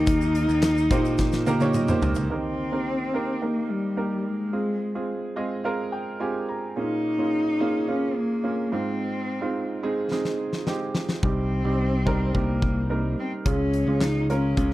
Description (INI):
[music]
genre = piano-driven pop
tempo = 108 BPM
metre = 4/4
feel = straight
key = Eb mixolydian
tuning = A4 = 440 Hz
[part]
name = warm cello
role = melody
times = 0.0-14.7 s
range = G3 to Eb4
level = -27 LUFS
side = left 1 dB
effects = none
[part]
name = clear upright piano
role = accompaniment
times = 0.0-14.7 s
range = Ab2 to Bb5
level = -27 LUFS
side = right 3 dB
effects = none
[part]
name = modern bright picked electric bass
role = bass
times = 0.0-2.3, 11.2-14.7 s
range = C2 to Bb2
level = -25 LUFS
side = left 1 dB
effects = none
[part]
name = huge arena drum kit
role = drums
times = 0.1-2.3, 10.1-14.7 s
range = handclaps, hi-hat, kick drum, snare drum, toms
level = -27 LUFS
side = equal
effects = none
[part]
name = tube shaker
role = percussion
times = 0.1-2.3 s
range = none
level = -45 LUFS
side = left 13 dB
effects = none
[sound]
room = little or no reverb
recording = dry, close 1970s-style studio recording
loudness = -22 LUFS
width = side -16 dB against mid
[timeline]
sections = 0.0-2.3 A section; 2.3-14.7 B section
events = drum fill 1.2-2.3, 10.1-11.2; upright piano fill 1.5-2.3, 5.1-6.8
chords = 0.0 Eb; 4.5 Fm; 6.8 Bbm7; 8.7 Ab6; 11.2 Cm; 13.5 Db